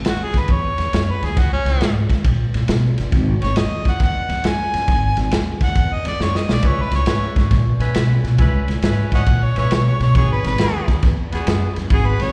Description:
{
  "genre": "electric blues shuffle",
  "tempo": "137 BPM",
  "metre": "4/4",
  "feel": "swing 66% on 8ths",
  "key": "G# minor",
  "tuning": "A4 = 441 Hz",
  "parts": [
    { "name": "crunchy breakbeat drum kit", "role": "drums", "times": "0.0-12.3 s", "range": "kick drum, ride cymbal, snare drum", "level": "-22 LUFS", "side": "equal", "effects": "none" },
    { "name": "warm harmonica", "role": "melody", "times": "0.1-12.3 s", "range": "C#4 to G#5", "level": "-26 LUFS", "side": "equal", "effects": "overdrive, slapback echo" },
    { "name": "upright bass", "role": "bass", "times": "0.1-12.3 s", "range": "G1 to B2", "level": "-22 LUFS", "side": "equal", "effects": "none" },
    { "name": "bright saxophone section", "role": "stabs", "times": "6.6-12.2 s", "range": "B3 to B4", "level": "-30 LUFS", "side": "equal", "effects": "slapback echo" }
  ],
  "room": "small room reverb",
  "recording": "live gig heard through the venue's PA, recital hall reverb",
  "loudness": "-18 LUFS",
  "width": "mono",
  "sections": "0.0-12.3 A section",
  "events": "harmonica solo 0.0-12.3; drum fill 6.2-6.6",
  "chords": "0.0 G#5; 1.4 C#5; 3.1 G#7(no3); 6.6 C#m7; 10.1 G#m7",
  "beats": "0.06 0.49 0.93 | 1.37 1.81 2.25 2.69 | 3.12 3.56 4.00 4.44 | 4.88 5.32 5.76 6.20 | 6.64 7.08 7.51 7.95 | 8.39 8.83 9.27 9.71 | 10.15 10.59 11.02 11.46 | 11.90"
}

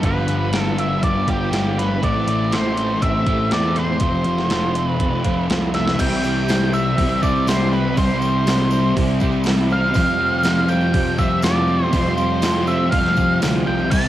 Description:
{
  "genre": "rock, shoegaze and dream pop",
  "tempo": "121 BPM",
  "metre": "4/4",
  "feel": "straight",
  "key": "C major",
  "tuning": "A4 = 440 Hz",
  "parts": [
    { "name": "octave-fuzz lead guitar", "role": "melody", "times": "0.0-14.1 s", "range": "G4 to A5", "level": "-22 LUFS", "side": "equal", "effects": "distortion, cassette tape, analog delay" },
    { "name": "twelve-string electric guitar", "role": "arpeggios", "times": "0.0-14.1 s", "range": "E3 to G4", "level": "-29 LUFS", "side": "right 2 dB", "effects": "none" },
    { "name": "overdriven electric guitar", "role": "riff", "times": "0.0-14.1 s", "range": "G2 to F4", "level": "-25 LUFS", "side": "right 8 dB", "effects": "reverse reverb, cassette tape" },
    { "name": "thick fuzz guitar", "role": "riff", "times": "0.0-14.1 s", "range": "F2 to C4", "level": "-22 LUFS", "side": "left 5 dB", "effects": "distortion, analog chorus, cassette tape" },
    { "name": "fuzz picked electric bass", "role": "bass", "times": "0.0-14.1 s", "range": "F1 to F2", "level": "-24 LUFS", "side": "equal", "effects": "overdrive" },
    { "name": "clean 12-bit digital drum machine", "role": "drums", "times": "0.0-14.0 s", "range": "crash cymbal, hi-hat, kick drum, snare drum", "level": "-23 LUFS", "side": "equal", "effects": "cassette tape" },
    { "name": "tambourine", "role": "percussion", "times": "6.0-14.1 s", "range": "none", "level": "-42 LUFS", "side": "left 7 dB", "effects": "none" }
  ],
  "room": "digital ambience",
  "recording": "home recording on cassette",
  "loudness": "-16 LUFS",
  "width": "side -13 dB against mid",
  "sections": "0.0-6.0 A section; 6.0-14.1 B section",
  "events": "drum fill 5.7",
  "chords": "0.0 G7; 2.0 Am7; 4.0 Fmaj7; 6.0 C; 10.0 Fsus2",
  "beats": "| 0.03 0.53 1.03 1.52 | 2.02 2.52 3.02 3.51 | 4.01 4.50 5.00 5.50 | 5.99 6.49 6.98 7.48 | 7.97 8.47 8.96 9.46 | 9.95 10.45 10.95 11.44 | 11.94 12.43 12.93 13.42 | 13.92"
}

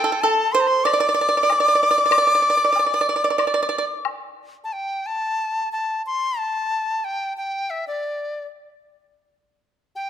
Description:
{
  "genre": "chinese traditional, Chinese chamber ensemble",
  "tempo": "93 BPM",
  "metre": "4/4",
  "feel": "straight",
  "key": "D shang mode",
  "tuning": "A4 = 440 Hz",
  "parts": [
    { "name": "bright reedy large dizi", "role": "melody", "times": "0.0-10.1 s", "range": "D5 to D6", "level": "-20 LUFS", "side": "left 2 dB", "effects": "none" },
    { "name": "pipa", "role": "second line", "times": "0.0-3.8 s", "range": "A4 to D5", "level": "-20 LUFS", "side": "right 4 dB", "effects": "none" },
    { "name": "woodblock", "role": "percussion", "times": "0.2-4.2 s", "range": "none", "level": "-28 LUFS", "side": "left 8 dB", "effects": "none" }
  ],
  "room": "moderate recital hall reverb, RT60 1.7 s",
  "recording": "close, detailed microphones",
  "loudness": "-18 LUFS",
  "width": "side -10 dB against mid",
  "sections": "0.0-4.7 A section; 4.7-10.1 B section",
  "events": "none",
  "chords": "none",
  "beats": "0.24 0.88 1.51 | 2.13 2.77 3.41 4.07 | 4.73 5.39 6.04 6.70 | 7.35 8.00 8.65 9.30 | 9.94"
}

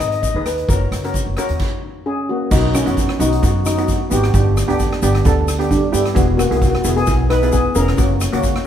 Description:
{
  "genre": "calypso",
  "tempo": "132 BPM",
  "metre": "4/4",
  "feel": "swing 53% on 16ths",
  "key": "B major",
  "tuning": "A4 = 441 Hz",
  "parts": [
    { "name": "steel pan", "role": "melody", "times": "0.0-8.7 s", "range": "F#3 to D#5", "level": "-20 LUFS", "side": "left 2 dB", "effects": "none" },
    { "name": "steel pan", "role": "accompaniment", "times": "0.0-8.5 s", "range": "A#3 to B4", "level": "-21 LUFS", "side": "right 1 dB", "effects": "none" },
    { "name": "upright bass", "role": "bass", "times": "0.0-8.5 s", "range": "E1 to G2", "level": "-19 LUFS", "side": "equal", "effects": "none" },
    { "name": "egg shaker", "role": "percussion", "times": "0.0-8.5 s", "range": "none", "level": "-31 LUFS", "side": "left 6 dB", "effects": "none" },
    { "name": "street-band drum kit", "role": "drums", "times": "0.1-8.7 s", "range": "crash cymbal, hi-hat, kick drum, rim click", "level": "-21 LUFS", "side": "equal", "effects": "none" }
  ],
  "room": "moderate plate reverb, RT60 1.4 s",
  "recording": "heard from further back in the room",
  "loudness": "-14 LUFS",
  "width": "side -10 dB against mid",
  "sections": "0.0-2.5 A section; 2.5-8.7 B section",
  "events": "stop 1.6-2.5",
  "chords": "0.0 G#m; 0.7 F#; 2.5 B; 4.3 G; 6.2 E; 8.0 F#",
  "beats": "0.23 | 0.69 1.14 1.60 2.06 | 2.51 2.97 3.42 3.88 | 4.34 4.79 5.25 5.70 | 6.16 6.62 7.07 7.53 | 7.98 8.44"
}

